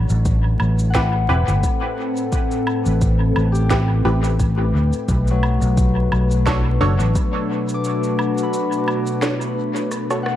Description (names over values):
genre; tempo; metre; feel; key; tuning
ambient dub; 87 BPM; 4/4; swing 55% on 16ths; A dorian; A4 = 440 Hz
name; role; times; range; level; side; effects
warbly tape-like pad; sustained chords; 0.0-10.4 s; A2 to B4; -23 LUFS; left 1 dB; chorus, built-in reverb
Celtic harp; arpeggios; 0.0-10.4 s; F#3 to D6; -28 LUFS; left 6 dB; vintage 12-bit sampler grit, tape echo
fingered electric bass; bass; 0.0-7.1 s; E1 to D2; -17 LUFS; equal; none
electronic cabasa, woodblock, snare drum and rim click; drums; 0.1-10.4 s; none; -30 LUFS; right 1 dB; dub echo
electronic kick drum; drums; 0.3-7.3 s; none; -22 LUFS; equal; none
filtered dub chord stab; stabs; 0.9-10.3 s; C4 to C#5; -26 LUFS; right 2 dB; phaser, dub echo
room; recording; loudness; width
light reverb, digital ambience; echo-heavy mix, vinyl crackle; -16 LUFS; side -12 dB against mid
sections
0.0-10.4 A section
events
break 7.8-10.4; drum fill 9.9-10.4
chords
0.0 Am7; 5.1 Bm7